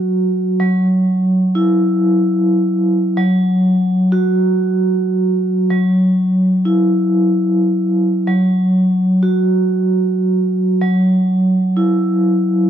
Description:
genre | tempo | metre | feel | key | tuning
hip hop | 94 BPM | 4/4 | swing 56% on 16ths | unclear | A4 = 442 Hz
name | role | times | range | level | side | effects
vibraphone with soft mallets | solo | 0.0-12.7 s | F#3 to F#4 | -13 LUFS | equal | cassette tape, high-pass filter, low-pass filter
room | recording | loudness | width
light reverb, studio reverb | none | -13 LUFS | side -9 dB against mid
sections
0.0-12.7 A section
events
none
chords
0.0 N.C.; 0.6 Esus2/F#; 3.2 N.C.; 5.7 Esus2/F#; 8.3 N.C.; 10.8 Esus2/F#

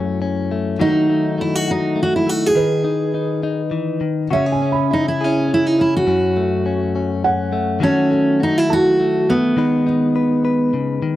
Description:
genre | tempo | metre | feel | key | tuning
acoustic folk-pop ballad | 103 BPM | 3/4 | straight | unclear | A4 = 440 Hz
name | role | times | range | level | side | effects
picked steel-string acoustic guitar | melody | 0.0-10.7 s | B3 to G#4 | -17 LUFS | right 1 dB | none
direct-recorded clean electric guitar | accompaniment | 0.0-11.2 s | F#2 to B4 | -20 LUFS | left 5 dB | none
felt-muted upright piano | arpeggios | 0.0-9.8 s | D#4 to B5 | -24 LUFS | right 4 dB | none
room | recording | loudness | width
light reverb | dry, close 1970s-style studio recording | -15 LUFS | side -14 dB against mid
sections
0.0-11.2 A section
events
none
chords
0.0 F#m; 0.8 D#dim; 2.6 G#m/D#; 4.3 C#m; 6.1 F#m; 7.8 D#dim; 9.6 G#m/D#

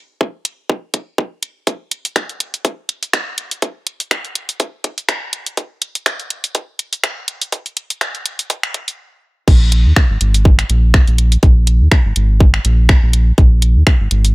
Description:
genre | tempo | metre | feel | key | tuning
minimal techno | 123 BPM | 4/4 | swing 56% on 16ths | unclear | A4 = 437 Hz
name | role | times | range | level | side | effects
electronic kick drum | drums | 0.2-14.0 s | none | -12 LUFS | equal | high-pass filter on kick, high-pass filter on room
garage drum kit | drums | 0.5-14.3 s | crash cymbal, finger snaps, hi-hat | -19 LUFS | equal | none
round analog bass | bass | 9.5-14.3 s | Ab1 to Eb2 | -12 LUFS | equal | sidechain pumping
room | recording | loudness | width
little or no reverb | high-pass filter | -13 LUFS | side -23 dB against mid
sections
0.0-9.5 A section; 9.5-14.3 B section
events
build-up 0.0-9.5; stop 9.0-9.5; drop 9.5-14.3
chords
none

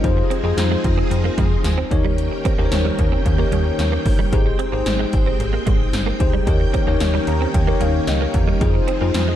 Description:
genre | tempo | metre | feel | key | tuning
1980s-style pop | 112 BPM | 4/4 | straight | unclear | A4 = 440 Hz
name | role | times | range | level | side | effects
bell-like tine electric piano | accompaniment | 0.0-9.4 s | Eb4 to Bb5 | -23 LUFS | left 5 dB | analog chorus
string machine, violins | sustained chords | 0.0-9.4 s | Eb3 to G5 | -27 LUFS | right 1 dB | ensemble chorus
slap-like FM bass | bass | 0.0-9.3 s | G1 to F2 | -21 LUFS | equal | none
80s electronic pad drums | drums | 0.0-9.3 s | hi-hat, kick drum, snare drum, tambourine | -20 LUFS | equal | none
direct-recorded clean electric guitar | riff | 0.2-9.4 s | G3 to C4 | -28 LUFS | right 9 dB | ensemble chorus, tape echo
room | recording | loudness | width
light reverb, digital ambience | dark, warm production | -16 LUFS | side -11 dB against mid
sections
0.0-9.4 A section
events
tine electric piano fill 7.0-8.6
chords
0.0 Fm7; 1.9 Eb7; 4.3 Abmaj7; 6.5 Eb7; 8.6 Fm7

